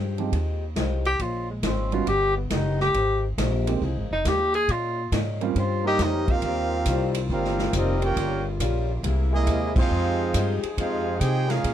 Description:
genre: jazz, big band swing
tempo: 138 BPM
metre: 4/4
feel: swing 66% on 8ths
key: unclear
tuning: A4 = 440 Hz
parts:
  - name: picked acoustic archtop guitar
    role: accompaniment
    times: 0.0-11.7 s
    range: Bb2 to C5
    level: -32 LUFS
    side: left 8 dB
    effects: none
  - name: upright bass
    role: bass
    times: 0.0-11.7 s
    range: F1 to C3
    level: -26 LUFS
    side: equal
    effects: none
  - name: warm grand piano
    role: accompaniment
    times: 0.2-5.5 s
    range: F3 to G4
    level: -28 LUFS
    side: right 11 dB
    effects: none
  - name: swinging big-band drum kit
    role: drums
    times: 0.2-11.7 s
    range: crash cymbal, hi-hat, kick drum, ride cymbal, snare drum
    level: -29 LUFS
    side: equal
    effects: none
  - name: warm tenor saxophone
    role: melody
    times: 1.1-6.4 s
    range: Ab3 to Ab4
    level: -24 LUFS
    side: left 1 dB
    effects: none
  - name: clear trombone section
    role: second line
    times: 5.8-11.7 s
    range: G3 to G4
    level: -29 LUFS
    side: right 6 dB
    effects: none
  - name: clear trumpet section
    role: melody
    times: 5.9-11.7 s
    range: Bb3 to G5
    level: -29 LUFS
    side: right 3 dB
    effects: none
  - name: warm saxophone section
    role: sustained chords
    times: 6.4-11.7 s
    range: C3 to Ab4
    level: -34 LUFS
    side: left 2 dB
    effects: none
room: little or no reverb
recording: none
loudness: -22 LUFS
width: side -10 dB against mid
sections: 0.0-6.4 A section; 6.4-11.7 B section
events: tenor saxophone solo 0.0-6.4; band accent 9.7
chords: 0.0 Fm9; 1.2 Bbm7; 2.1 Eb7alt; 2.9 Abmaj9; 3.8 Fm7; 4.7 Bbm11; 5.6 Eb13; 8.2 Gm7b5; 9.0 C7alt; 9.9 Fm9

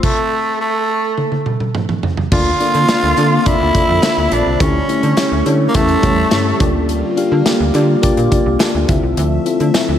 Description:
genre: 1980s-style pop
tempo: 105 BPM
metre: 4/4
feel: straight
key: unclear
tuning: A4 = 440 Hz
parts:
  - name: raspy tenor saxophone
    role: melody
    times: 0.0-6.6 s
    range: A3 to F4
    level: -17 LUFS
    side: right 1 dB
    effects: analog delay
  - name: FM electric piano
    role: accompaniment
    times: 0.0-10.0 s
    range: D3 to F5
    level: -18 LUFS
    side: left 3 dB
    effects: chorus
  - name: modern studio drum kit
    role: drums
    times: 0.0-9.9 s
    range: crash cymbal, hi-hat, kick drum, snare drum, tambourine, toms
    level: -18 LUFS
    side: equal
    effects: none
  - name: phased analog pad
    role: sustained chords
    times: 2.3-10.0 s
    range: D3 to E5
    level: -22 LUFS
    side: right 1 dB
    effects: phaser, chorus
  - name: slap-like FM bass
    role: bass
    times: 2.3-10.0 s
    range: Bb1 to D3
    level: -18 LUFS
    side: right 1 dB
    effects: none
  - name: group handclap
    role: percussion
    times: 2.9-9.9 s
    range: none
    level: -35 LUFS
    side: right 3 dB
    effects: none
room: wet lush hall reverb, RT60 2.2 s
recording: dreamy mix soaked in reverb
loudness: -12 LUFS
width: side -10 dB against mid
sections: 0.0-2.3 A section; 2.3-10.0 B section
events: stop 0.0-2.3; drum fill 1.2-2.3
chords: 0.0 N.C.; 2.3 Bbmaj7/D; 4.6 A7/D; 6.6 Gm7/D; 8.9 Fmaj7

